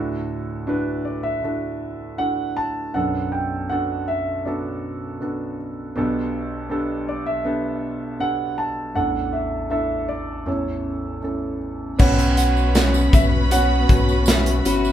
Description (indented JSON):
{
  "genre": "pop ballad",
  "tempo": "79 BPM",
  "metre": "4/4",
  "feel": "straight",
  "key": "unclear",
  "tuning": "A4 = 440 Hz",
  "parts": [
    { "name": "warm concert grand piano", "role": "accompaniment", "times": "0.0-14.9 s", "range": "A1 to E5", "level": "-24 LUFS", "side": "right 1 dB", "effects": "none" },
    { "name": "dark concert grand piano", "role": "melody", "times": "1.0-14.9 s", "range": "C#5 to A5", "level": "-26 LUFS", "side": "right 2 dB", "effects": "none" },
    { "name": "dark studio violin section", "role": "second line", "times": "12.0-14.9 s", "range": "B4 to B5", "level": "-29 LUFS", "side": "equal", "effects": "none" },
    { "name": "muted studio string section", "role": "sustained chords", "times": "12.0-14.9 s", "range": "B3 to F#4", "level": "-30 LUFS", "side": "left 2 dB", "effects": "none" },
    { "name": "fingerpicked steel-string acoustic guitar", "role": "arpeggios", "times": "12.0-14.9 s", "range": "B2 to B4", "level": "-26 LUFS", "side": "left 3 dB", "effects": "none" },
    { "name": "warm sub bass", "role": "bass", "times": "12.0-14.9 s", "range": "G1 to B1", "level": "-20 LUFS", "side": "left 1 dB", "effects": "none" },
    { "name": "modern studio drum kit", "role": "drums", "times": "12.0-14.8 s", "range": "crash cymbal, hi-hat, kick drum, snare drum", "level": "-18 LUFS", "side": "left 1 dB", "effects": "none" },
    { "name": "tambourine", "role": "percussion", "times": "12.0-14.9 s", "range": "none", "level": "-35 LUFS", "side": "right 5 dB", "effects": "none" }
  ],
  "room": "moderate large studio reverb, RT60 0.9 s",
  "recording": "band playing live in one room",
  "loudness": "-20 LUFS",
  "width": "side -11 dB against mid",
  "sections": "0.0-12.0 A section; 12.0-14.9 B section",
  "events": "none",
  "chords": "0.0 Dadd9; 3.0 Bm7; 6.0 Gadd9/B; 9.0 Asus4; 10.5 A; 12.0 Bsus2"
}